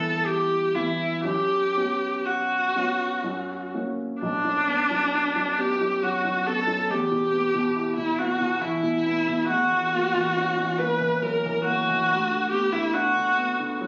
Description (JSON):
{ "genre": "classical, romantic duo for viola and grand piano", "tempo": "59-72 BPM", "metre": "3/4", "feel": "rubato", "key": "B minor", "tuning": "A4 = 440 Hz", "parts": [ { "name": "rich viola", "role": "melody", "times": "0.0-13.8 s", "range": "D4 to B4", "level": "-25 LUFS", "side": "equal", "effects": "none" }, { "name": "clear concert grand piano", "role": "accompaniment", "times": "0.0-13.9 s", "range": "B1 to E4", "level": "-32 LUFS", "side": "equal", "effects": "none" } ], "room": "light reverb", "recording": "recorded on a phone in the room, studio reverb, nothing above 7.5 kHz", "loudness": "-24 LUFS", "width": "mono", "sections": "0.0-4.2 A section; 4.2-13.9 B section", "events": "none", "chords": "0.0 Em/G; 1.2 F#sus4; 3.2 F#; 4.2 Bm; 6.9 Em; 9.5 F#7/E; 12.1 Bm/D" }